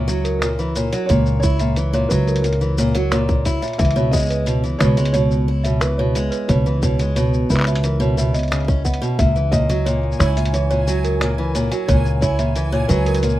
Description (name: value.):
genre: folktronica.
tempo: 89 BPM.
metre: 4/4.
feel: straight.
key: unclear.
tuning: A4 = 440 Hz.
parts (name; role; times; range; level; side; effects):
felt-muted upright piano; melody; 0.0-13.4 s; A#4 to E5; -26 LUFS; right 2 dB; ping-pong delay.
celesta; second line; 0.0-13.4 s; A#4 to F#5; -26 LUFS; equal; ping-pong delay.
picked steel-string acoustic guitar; arpeggios; 0.0-13.4 s; A#2 to E4; -22 LUFS; equal; ping-pong delay.
upright bass; bass; 0.0-13.4 s; C#2; -19 LUFS; equal; none.
lo-fi sampler-style drum kit; drums; 0.1-13.4 s; finger snaps, hi-hat, shaker; -28 LUFS; left 1 dB; none.
electronic kick drum; drums; 1.1-13.0 s; none; -21 LUFS; equal; none.
backwards swelling texture; texture; 10.0-13.4 s; G#5; -32 LUFS; right 3 dB; built-in reverb.
room: light reverb.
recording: rough home demo mix, vinyl crackle.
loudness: -16 LUFS.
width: side -14 dB against mid.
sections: 0.0-13.4 A section.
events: none.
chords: 0.0 F#7/C#; 3.8 C#m7; 9.2 F#7/C#.